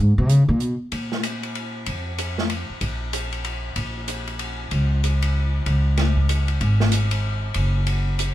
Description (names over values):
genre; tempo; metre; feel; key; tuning
modal jazz; 190 BPM; 3/4; swing 62% on 8ths; Bb phrygian; A4 = 440 Hz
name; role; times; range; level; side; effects
upright bass; bass; 0.0-8.3 s; Gb1 to Db3; -20 LUFS; equal; none
open jazz drum kit; drums; 0.3-8.3 s; hi-hat, kick drum, ride cymbal, snare drum; -27 LUFS; left 1 dB; none
room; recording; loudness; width
moderate studio reverb, RT60 0.8 s; minimal, uncompressed stereo recording; -20 LUFS; side -14 dB against mid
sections
0.9-8.3 A section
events
none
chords
none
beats
0.30 0.61 | 0.93 1.24 1.56 | 1.87 2.19 2.50 | 2.82 3.14 3.45 | 3.77 4.08 4.40 | 4.71 5.03 5.35 | 5.66 5.98 6.29 | 6.61 6.92 7.24 | 7.55 7.87 8.19